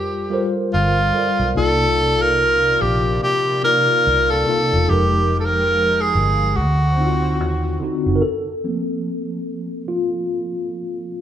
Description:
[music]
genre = R&B, neo-soul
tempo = 72 BPM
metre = 4/4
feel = swing 58% on 16ths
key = unclear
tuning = A4 = 442 Hz
[part]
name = breathy tenor saxophone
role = melody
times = 0.0-7.8 s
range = F4 to Bb4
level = -17 LUFS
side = equal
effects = none
[part]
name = mellow tine electric piano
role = accompaniment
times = 0.0-11.2 s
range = C3 to F5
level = -22 LUFS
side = left 1 dB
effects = medium stereo tremolo
[part]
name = vintage muted fingered electric bass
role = bass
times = 0.7-8.2 s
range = E1 to Eb2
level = -21 LUFS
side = equal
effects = none
[part]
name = chorused pulse-width pad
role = sustained chords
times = 1.5-8.2 s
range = C3 to G5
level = -30 LUFS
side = equal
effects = none
[sound]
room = wet large studio reverb, RT60 1.3 s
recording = band playing live in one room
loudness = -16 LUFS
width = side -10 dB against mid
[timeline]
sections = 0.0-8.2 A section; 8.2-11.2 B section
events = tine electric piano solo 8.2-11.2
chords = 0.0 Gm11; 1.5 Cm11; 4.9 Fm11; 6.5 D7b9; 8.2 Fadd11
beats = 0.71 | 1.55 2.38 3.21 4.05 | 4.88 5.71 6.55 7.38 | 8.21 9.05 9.88 10.71

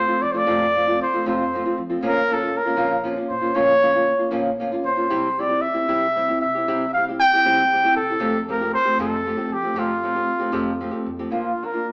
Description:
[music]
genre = mexican folk, mariachi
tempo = 77 BPM (dotted quarters)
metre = 6/8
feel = rubato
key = F major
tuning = A4 = 440 Hz
[part]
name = warm trumpet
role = melody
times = 0.0-11.9 s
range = F4 to G5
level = -19 LUFS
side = equal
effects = none
[part]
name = nylon-string guitar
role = accompaniment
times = 0.0-11.9 s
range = F2 to G4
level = -23 LUFS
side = equal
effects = none
[part]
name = upright bass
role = bass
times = 0.0-11.9 s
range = Bb1 to F3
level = -42 LUFS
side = equal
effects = none
[sound]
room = wet large studio reverb, RT60 0.9 s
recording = band playing live in one room, AM radio sound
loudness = -18 LUFS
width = side -38 dB against mid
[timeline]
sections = 0.0-11.3 A section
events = none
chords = 0.0 F; 2.0 Bbm; 5.1 C; 8.2 Fadd9; 11.3 Bb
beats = | 0.48 1.26 | 2.02 2.78 | 3.55 4.32 | 5.11 5.89 | 6.67 7.44 | 8.20 8.97 | 9.75 10.54 | 11.34

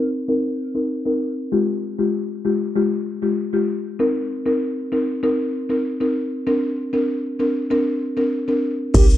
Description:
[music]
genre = dancehall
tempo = 97 BPM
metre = 4/4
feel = straight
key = unclear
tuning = A4 = 440 Hz
[part]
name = buzzing marimba with soft mallets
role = accompaniment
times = 0.0-9.2 s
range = Ab3 to Bb4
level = -20 LUFS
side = left 1 dB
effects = sidechain pumping, low-pass filter
[part]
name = hollow clarinet-like synth lead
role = melody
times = 8.9-9.1 s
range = G4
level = -26 LUFS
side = right 4 dB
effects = chorus, tape echo
[part]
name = short 808-style bass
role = bass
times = 8.9-9.2 s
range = C2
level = -16 LUFS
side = equal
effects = none
[part]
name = booming analog drum machine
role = drums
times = 8.9-9.2 s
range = crash cymbal, kick drum, shaker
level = -13 LUFS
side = equal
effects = none
[sound]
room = moderate plate reverb, RT60 2.4 s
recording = dark, warm production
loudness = -19 LUFS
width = side -13 dB against mid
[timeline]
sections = 0.0-8.9 A section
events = filter sweep on marimba 0.0-8.9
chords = 0.0 Cm7; 1.5 Fmadd9; 4.0 Cm7; 6.5 Bbadd9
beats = 0.28 0.90 | 1.52 2.14 2.76 3.38 | 4.00 4.62 5.23 5.85 | 6.47 7.09 7.71 8.33 | 8.95

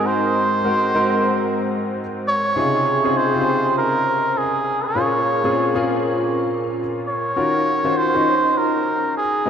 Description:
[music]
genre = R&B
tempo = 100 BPM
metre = 4/4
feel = swing 61% on 16ths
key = Eb dorian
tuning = A4 = 440 Hz
[part]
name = trumpet with cup mute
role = melody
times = 0.0-9.5 s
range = Ab4 to Db5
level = -20 LUFS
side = right 1 dB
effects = none
[part]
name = warm concert grand piano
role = accompaniment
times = 0.0-9.5 s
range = Ab2 to Eb5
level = -20 LUFS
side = left 1 dB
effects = analog chorus
[sound]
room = wet lush hall reverb, RT60 2.7 s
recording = dreamy mix soaked in reverb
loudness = -17 LUFS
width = side -8 dB against mid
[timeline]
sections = 0.0-9.5 A section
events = none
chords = 0.0 Ab7; 2.6 Dbmaj7; 5.0 Bbm7; 7.4 Ebm9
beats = | 0.16 0.76 1.36 1.96 | 2.56 3.16 3.76 4.36 | 4.96 5.56 6.16 6.76 | 7.36 7.96 8.56 9.16

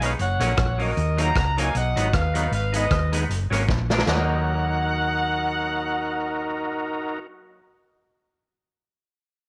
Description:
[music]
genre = ska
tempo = 155 BPM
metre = 4/4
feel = swing 55% on 8ths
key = Eb minor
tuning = A4 = 440 Hz
[part]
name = warm horn section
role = melody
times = 0.0-7.2 s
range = Bb4 to Bb5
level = -29 LUFS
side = equal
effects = none
[part]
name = clean electric guitar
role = accompaniment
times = 0.0-7.6 s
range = F3 to Eb4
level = -33 LUFS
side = equal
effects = analog chorus, slapback echo
[part]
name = overdriven tonewheel organ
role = stabs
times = 0.0-7.2 s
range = Db4 to Cb5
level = -32 LUFS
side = equal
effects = chorus vibrato, slapback echo
[part]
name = hollow-body short-scale fingered electric bass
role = bass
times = 0.0-7.2 s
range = Gb1 to Eb2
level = -28 LUFS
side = equal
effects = none
[part]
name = vintage drum kit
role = drums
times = 0.0-4.2 s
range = china cymbal, hi-hat, kick drum, rim click, snare drum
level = -28 LUFS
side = equal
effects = slapback echo
[sound]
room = moderate spring reverb, RT60 1.8 s, studio reverb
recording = none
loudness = -23 LUFS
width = mono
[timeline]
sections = 0.0-4.1 A section; 4.1-7.2 B section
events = drum fill 3.7-4.1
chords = 0.2 Gb; 1.0 Ebm; 1.8 B; 2.5 Abm; 3.3 Gb; 3.7 Bb; 4.1 Ebm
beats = 0.20 0.58 | 0.97 1.36 1.75 2.14 | 2.53 2.92 3.31 3.69 | 4.08 4.47 4.86 5.24 | 5.63 6.02 6.40 6.79

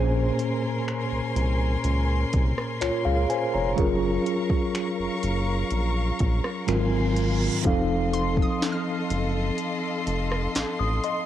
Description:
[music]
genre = contemporary R&B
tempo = 62 BPM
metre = 4/4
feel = straight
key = unclear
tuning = A4 = 440 Hz
[part]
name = mellow tine electric piano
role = accompaniment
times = 0.0-11.3 s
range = Ab2 to Eb6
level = -26 LUFS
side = equal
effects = medium stereo tremolo, cassette tape
[part]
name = rich studio string section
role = sustained chords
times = 0.0-11.3 s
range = Db4 to Db6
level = -31 LUFS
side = left 3 dB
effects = sidechain pumping, cassette tape
[part]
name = round analog bass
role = bass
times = 0.0-11.0 s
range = F1 to Db2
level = -26 LUFS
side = equal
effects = none
[part]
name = glassy wavetable pluck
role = texture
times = 0.0-11.3 s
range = Ab5 to F6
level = -36 LUFS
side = left 2 dB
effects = chorus, cassette tape, tape echo
[part]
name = smooth R&B drum kit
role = drums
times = 0.4-11.3 s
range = finger snaps, hi-hat, kick drum, rim click, snare drum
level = -27 LUFS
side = equal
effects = overdrive, cassette tape
[part]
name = reverse cymbal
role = sound effects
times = 6.9-7.7 s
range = none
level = -36 LUFS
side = right 6 dB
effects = none
[sound]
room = light reverb, digital ambience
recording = home recording on cassette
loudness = -22 LUFS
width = side -11 dB against mid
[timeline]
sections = 0.0-7.6 A section; 7.6-11.3 B section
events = reverse cymbal 6.9-7.6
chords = 0.0 Bbm9; 3.8 Gbmaj7; 6.7 Ab13; 7.6 F7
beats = 0.88 1.84 2.81 | 3.78 4.75 5.71 6.68 | 7.65 8.62 9.58 10.55

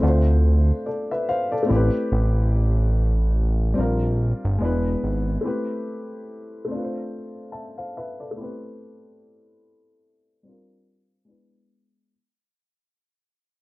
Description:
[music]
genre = lo-fi hip hop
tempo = 72 BPM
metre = 4/4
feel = swing 59% on 16ths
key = A minor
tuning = A4 = 440 Hz
[part]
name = dark upright piano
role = accompaniment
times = 0.0-12.1 s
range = G3 to A5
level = -26 LUFS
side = left 1 dB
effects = cassette tape, low-pass filter
[part]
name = fat analog bass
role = bass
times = 0.0-5.4 s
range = E1 to D2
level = -19 LUFS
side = equal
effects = none
[sound]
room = light reverb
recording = dark, warm production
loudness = -20 LUFS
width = side -20 dB against mid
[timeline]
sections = 0.0-12.1 A section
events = filter sweep on upright piano 0.0-12.1; fade-out 1.4-12.1; break 5.4-12.1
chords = 0.0 Dm7; 1.7 Am9; 3.8 Bb69; 4.6 E7; 5.4 Am9; 6.7 Dm7; 8.4 Am9; 10.4 Bb69; 11.3 E7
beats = 0.45 1.28 | 2.11 2.94 3.78 4.61 | 5.45 6.28 7.11 7.95 | 8.78 9.61 10.45 11.28

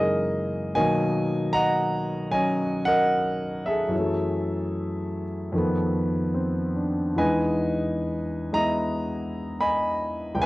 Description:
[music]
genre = solo jazz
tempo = 75 BPM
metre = 4/4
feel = swing 68% on 8ths, rubato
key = unclear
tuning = A4 = 440 Hz
[part]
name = warm concert grand piano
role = solo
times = 0.0-10.5 s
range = C#2 to B5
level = -23 LUFS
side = equal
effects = cassette tape
[sound]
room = moderate spring reverb, RT60 1.3 s, small room reverb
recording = home recording on cassette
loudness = -23 LUFS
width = side -19 dB against mid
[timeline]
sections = 0.0-10.5 A section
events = none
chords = 0.0 F#13; 0.7 Bmaj7; 3.9 F#m9; 5.5 F7#11; 7.2 Emaj7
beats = | 0.75 1.54 2.33 3.13 | 3.92 4.72 5.53 6.34 | 7.17 7.99 8.81 9.61 | 10.41

